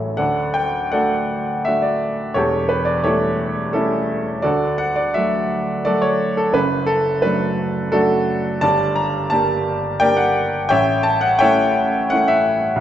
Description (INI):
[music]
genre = classical, romantic character piece for solo piano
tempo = 86 BPM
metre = 3/4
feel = rubato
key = D major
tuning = A4 = 441 Hz
[part]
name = clear upright piano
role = solo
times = 0.0-12.8 s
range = E1 to Bb5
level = -16 LUFS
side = equal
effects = none
[sound]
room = wet recital hall reverb, RT60 1.2 s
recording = dark, warm production, nothing above 7.8 kHz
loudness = -16 LUFS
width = side -10 dB against mid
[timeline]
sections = 0.2-12.8 A section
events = none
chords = 0.2 D; 2.4 A7/E; 4.4 D; 6.5 D/F#; 8.6 Gm; 10.7 A7